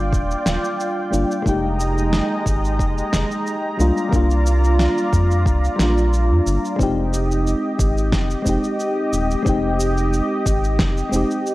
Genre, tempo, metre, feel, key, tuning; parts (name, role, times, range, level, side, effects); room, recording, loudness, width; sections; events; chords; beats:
sunset chillout; 90 BPM; 4/4; straight; F minor from 6.8 s; A4 = 439 Hz
mellow FM electric piano; accompaniment; 0.0-11.5 s; G3 to G4; -22 LUFS; left 1 dB; chorus, auto-pan, ping-pong delay
lush unison pad; sustained chords; 0.0-11.5 s; Ab3 to Bb5; -24 LUFS; equal; chorus
round analog bass; bass; 0.0-11.2 s; Eb1 to F2; -19 LUFS; equal; tube saturation
electronic cabasa and snare drum; drums; 0.1-11.5 s; -26 LUFS; equal
electronic kick drum; drums; 0.1-10.9 s; -22 LUFS; equal
moderate scoring stage reverb, RT60 1.8 s; worn, warbling old tape, cassette tape, warbly pitch drift; -17 LUFS; side -17 dB against mid
0.0-6.8 A section; 6.8-11.5 B section
0.0 Ebmaj9; 1.5 Fm11; 3.8 C9sus4; 6.8 Fm9
0.13 0.80 | 1.46 2.13 2.79 3.46 | 4.13 4.79 5.46 6.13 | 6.79 7.46 8.13 8.79 | 9.46 10.13 10.79 11.46